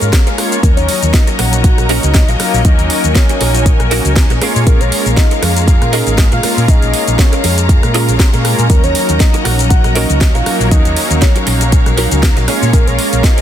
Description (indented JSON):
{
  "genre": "nu-disco, nu disco",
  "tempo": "119 BPM",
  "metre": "4/4",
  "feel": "swing 55% on 16ths",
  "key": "unclear",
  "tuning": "A4 = 441 Hz",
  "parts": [
    { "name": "mellow synth brass", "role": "accompaniment", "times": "0.0-13.4 s", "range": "Gb3 to Db5", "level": "-18 LUFS", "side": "equal", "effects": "chorus, sidechain pumping, digital delay" },
    { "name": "clear studio string section", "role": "sustained chords", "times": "0.0-13.4 s", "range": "Gb4 to Bb5", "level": "-22 LUFS", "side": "left 3 dB", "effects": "sidechain pumping" },
    { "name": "direct-recorded clean electric guitar", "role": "riff", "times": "0.0-13.4 s", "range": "Db4 to Bb4", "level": "-21 LUFS", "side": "right 3 dB", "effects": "ensemble chorus, digital delay" },
    { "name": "hollow-body short-scale fingered electric bass", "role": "bass", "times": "0.0-13.2 s", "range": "Ab1 to Bb2", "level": "-15 LUFS", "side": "equal", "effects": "sidechain pumping" },
    { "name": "house drum kit", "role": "drums", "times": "0.0-13.4 s", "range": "hi-hat, rim click, shaker, snare drum", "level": "-18 LUFS", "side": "equal", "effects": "none" },
    { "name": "electronic kick drum", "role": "drums", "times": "0.1-13.3 s", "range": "none", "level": "-10 LUFS", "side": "equal", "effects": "none" },
    { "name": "soft octave-layered synth lead", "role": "melody", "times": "0.6-13.4 s", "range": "Bb4 to Gb5", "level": "-21 LUFS", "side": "left 1 dB", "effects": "chorus, phaser, tape echo" }
  ],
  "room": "little or no reverb",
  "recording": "dense, heavily limited modern master",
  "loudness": "-9 LUFS",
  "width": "side -10 dB against mid",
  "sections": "0.0-13.4 A section",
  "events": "none",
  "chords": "0.0 Bbm7; 0.6 Ebm7; 4.4 Bbm7; 8.7 Ebm7; 12.5 Bbm7",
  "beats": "0.13 | 0.63 1.14 1.64 2.15 | 2.65 3.15 3.66 4.16 | 4.67 5.17 5.67 6.18 | 6.68 7.19 7.69 8.20 | 8.70 9.20 9.71 10.21 | 10.72 11.22 11.72 12.23 | 12.73 13.24"
}